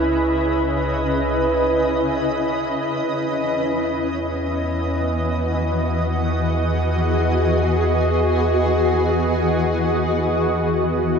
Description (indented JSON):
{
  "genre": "ambient",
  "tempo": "free time",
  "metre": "none",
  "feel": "none",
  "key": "unclear",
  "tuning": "A4 = 441 Hz",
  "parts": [
    { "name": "shimmering ambient pad", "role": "sustained chords", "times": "0.0-11.2 s", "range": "C#3 to D#5", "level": "-19 LUFS", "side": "equal", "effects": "chorus, built-in reverb" },
    { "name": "round analog bass", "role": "bass", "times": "0.0-11.2 s", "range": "C#2 to E2", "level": "-24 LUFS", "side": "equal", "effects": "none" }
  ],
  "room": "wet lush hall reverb, RT60 2.6 s",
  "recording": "dreamy mix soaked in reverb, nothing above 8.0 kHz",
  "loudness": "-18 LUFS",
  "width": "side -6 dB against mid",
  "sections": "0.0-11.2 A section",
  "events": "none",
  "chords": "0.0 C#m7; 2.8 Emaj7"
}